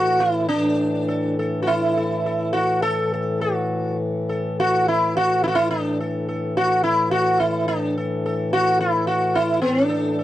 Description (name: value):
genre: indian classical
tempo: 105 BPM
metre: 4/4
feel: straight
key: unclear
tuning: A4 = 440 Hz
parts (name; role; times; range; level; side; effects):
- sitar; melody; 0.0-10.2 s; D4 to A4; -20 LUFS; equal; none
- pedal harmonium; drone; 0.0-10.2 s; A2 to E3; -25 LUFS; left 2 dB; stereo widening
room: light reverb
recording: dry, close 1970s-style studio recording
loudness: -19 LUFS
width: side -14 dB against mid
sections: 0.5-9.6 A section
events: speeding up 0.0-10.2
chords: none